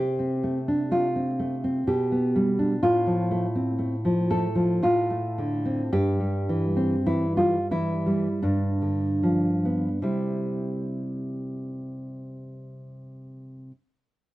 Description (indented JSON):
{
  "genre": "classical",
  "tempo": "35-63 BPM",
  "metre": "3/4",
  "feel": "rubato",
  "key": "C major",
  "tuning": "A4 = 441 Hz",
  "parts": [
    { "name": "nylon-string guitar", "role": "accompaniment", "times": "0.0-13.7 s", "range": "G2 to A4", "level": "-23 LUFS", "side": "equal", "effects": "none" }
  ],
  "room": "little or no reverb",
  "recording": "dry, close 1970s-style studio recording",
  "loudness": "-23 LUFS",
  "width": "side -17 dB against mid",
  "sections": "0.0-10.0 A section; 10.0-14.3 B section",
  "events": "slowing down 1.4-10.0",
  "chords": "0.0 Dm7/C; 1.9 G/B; 2.8 F/A; 4.8 Dm7/A; 5.9 C/G; 8.4 G7; 10.0 C",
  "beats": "0.91 1.87 | 2.82 3.79 4.83 | 5.92 7.05 8.41 | 10.02 11.49 12.93"
}